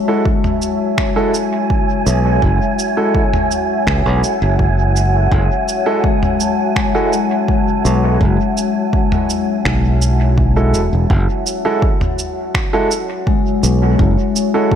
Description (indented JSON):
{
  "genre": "ambient dub",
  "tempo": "83 BPM",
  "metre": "4/4",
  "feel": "straight",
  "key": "F# minor",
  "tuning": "A4 = 442 Hz",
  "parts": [
    { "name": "deep dark ambient pad", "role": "sustained chords", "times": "0.0-14.8 s", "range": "F#4 to F#5", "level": "-21 LUFS", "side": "equal", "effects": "chorus, built-in reverb" },
    { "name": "vibraphone with soft mallets", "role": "arpeggios", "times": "0.0-14.8 s", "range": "G#3 to A5", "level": "-21 LUFS", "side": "left 7 dB", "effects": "dub echo" },
    { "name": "wind-like tuned noise texture", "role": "texture", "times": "0.6-11.1 s", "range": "G#5", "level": "-24 LUFS", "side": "right 7 dB", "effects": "built-in reverb" },
    { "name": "warm upright piano", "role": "stabs", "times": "0.1-14.8 s", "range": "G#3 to A4", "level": "-21 LUFS", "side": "right 2 dB", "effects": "dub echo" },
    { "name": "electronic kick drum", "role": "drums", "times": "0.3-14.8 s", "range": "none", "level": "-18 LUFS", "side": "equal", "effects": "overdrive, small room ambience" },
    { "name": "lo-fi sampler-style drum kit", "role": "drums", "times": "0.4-14.5 s", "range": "cabasa, finger snaps, toms", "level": "-22 LUFS", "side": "right 2 dB", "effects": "small room ambience, dub echo" },
    { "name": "modern bright fingered electric bass", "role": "bass", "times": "2.1-14.2 s", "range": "E1 to C#2", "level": "-14 LUFS", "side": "equal", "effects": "none" }
  ],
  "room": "light reverb",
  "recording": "none",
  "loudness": "-13 LUFS",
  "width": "side -9 dB against mid",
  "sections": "0.0-11.1 A section; 11.1-14.8 B section",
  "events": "none",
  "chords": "0.0 F#m9"
}